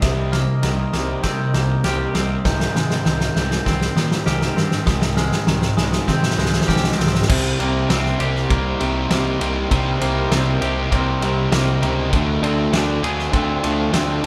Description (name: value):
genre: post-rock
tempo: 99 BPM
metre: 4/4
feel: straight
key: C minor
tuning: A4 = 440 Hz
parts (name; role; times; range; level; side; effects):
- deep dark ambient pad; sustained chords; 0.0-14.3 s; C4 to G5; -35 LUFS; equal; none
- glockenspiel with soft plastic mallets; arpeggios; 0.0-7.3 s; Eb6 to G6; -34 LUFS; equal; none
- twangy electric guitar; arpeggios; 0.0-14.3 s; C3 to Ab4; -30 LUFS; equal; none
- fuzz guitar; riff; 0.0-14.3 s; Ab2 to D4; -25 LUFS; equal; distortion
- fuzz picked electric bass; bass; 0.0-14.3 s; C2 to C3; -27 LUFS; equal; overdrive
- loose indie drum kit; drums; 0.0-14.3 s; crash cymbal, kick drum, ride cymbal, snare drum; -24 LUFS; equal; none
- crunchy overdriven guitar; riff; 7.3-14.3 s; C3 to D4; -26 LUFS; equal; none
room: wet large studio reverb, RT60 1.1 s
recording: band playing live in one room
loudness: -19 LUFS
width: mono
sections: 0.0-7.3 A section; 7.3-14.3 B section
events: build-up 0.0-7.3; drum fill 0.0-7.3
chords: 0.0 Cm7; 2.4 Abmaj7/C; 7.3 Cm7; 12.1 Dm7b5